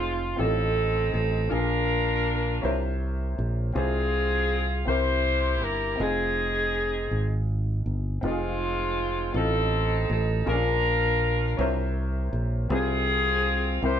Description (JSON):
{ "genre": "slow gospel", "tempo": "54 BPM (dotted quarters)", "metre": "6/8", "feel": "straight", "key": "F minor", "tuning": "A4 = 441 Hz", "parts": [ { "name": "clear saxophone section", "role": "melody", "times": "0.0-14.0 s", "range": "Ab3 to C5", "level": "-26 LUFS", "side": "equal", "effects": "none" }, { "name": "clear grand piano", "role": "accompaniment", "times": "0.0-14.0 s", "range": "A2 to E5", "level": "-33 LUFS", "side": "left 2 dB", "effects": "none" }, { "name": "fingered electric bass", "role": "bass", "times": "0.0-14.0 s", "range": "F1 to C2", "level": "-27 LUFS", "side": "equal", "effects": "none" } ], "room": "moderate small room reverb, RT60 0.5 s", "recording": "band playing live in one room", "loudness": "-23 LUFS", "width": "side -9 dB against mid", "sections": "0.0-8.2 A section; 8.2-14.0 A section", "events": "none", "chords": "0.4 F7/A; 1.5 Bb7; 2.6 C7b9; 3.7 Fm/C; 4.9 C7; 6.0 Fm7; 9.3 F7/A; 10.5 Bb7; 11.6 C7b9; 12.7 Fm/C" }